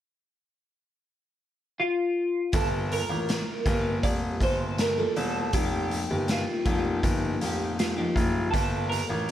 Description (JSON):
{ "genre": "indie pop, bedroom pop", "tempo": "80 BPM", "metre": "4/4", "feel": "straight", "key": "G minor", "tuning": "A4 = 439 Hz", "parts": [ { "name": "twelve-string electric guitar", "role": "melody", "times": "1.8-9.3 s", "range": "F4 to D5", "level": "-29 LUFS", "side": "equal", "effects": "analog chorus, slapback echo" }, { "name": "picked steel-string acoustic guitar", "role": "accompaniment", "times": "2.5-9.3 s", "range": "F3 to A4", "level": "-31 LUFS", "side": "left 2 dB", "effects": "lush chorus, warbly pitch drift" }, { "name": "clear baby grand piano", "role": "bass", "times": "2.5-9.3 s", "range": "E1 to A1", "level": "-30 LUFS", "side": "equal", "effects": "none" }, { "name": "raw garage drum kit", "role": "drums", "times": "2.5-9.3 s", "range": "hi-hat, kick drum, snare drum", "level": "-29 LUFS", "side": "equal", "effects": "none" } ], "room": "light reverb", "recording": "none", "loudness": "-24 LUFS", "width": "side -11 dB against mid", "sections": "0.0-2.5 A section; 2.5-9.3 B section", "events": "none", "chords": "0.0 N.C.; 2.5 Gm9; 5.5 F9sus4; 8.5 Gm9" }